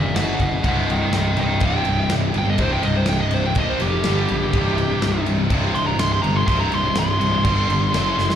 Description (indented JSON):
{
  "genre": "heavy metal",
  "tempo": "124 BPM",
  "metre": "4/4",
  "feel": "straight",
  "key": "unclear",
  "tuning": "A4 = 440 Hz",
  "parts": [
    { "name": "high-gain lead guitar", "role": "melody", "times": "0.0-8.4 s", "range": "G4 to C6", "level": "-23 LUFS", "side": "equal", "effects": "distortion, slapback echo" },
    { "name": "scooped high-gain guitar", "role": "riff", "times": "0.0-8.4 s", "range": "C2 to Bb3", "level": "-27 LUFS", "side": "right 8 dB", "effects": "distortion" },
    { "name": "tight distorted guitar", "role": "riff", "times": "0.0-8.4 s", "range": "C2 to Bb3", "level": "-27 LUFS", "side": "left 9 dB", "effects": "distortion" },
    { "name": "fuzz picked electric bass", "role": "bass", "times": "0.0-8.4 s", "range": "C1 to Bb1", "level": "-22 LUFS", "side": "equal", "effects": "overdrive" },
    { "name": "modern studio drum kit", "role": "drums", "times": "0.2-8.4 s", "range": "crash cymbal, kick drum, snare drum", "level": "-25 LUFS", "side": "equal", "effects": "none" },
    { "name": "tight distorted guitar", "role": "riff", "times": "0.6-8.4 s", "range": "C2 to Bb3", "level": "-26 LUFS", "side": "equal", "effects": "distortion, slapback echo" }
  ],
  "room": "little or no reverb",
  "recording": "live gig heard through the venue's PA, club reverb",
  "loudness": "-17 LUFS",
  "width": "side -9 dB against mid",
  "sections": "0.0-8.4 A section",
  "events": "lead electric guitar solo 0.0-8.4; drum fill 8.2",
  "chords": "0.2 F#5; 0.6 Cm; 3.6 Bb5; 4.0 G5; 4.5 C5; 7.4 G5"
}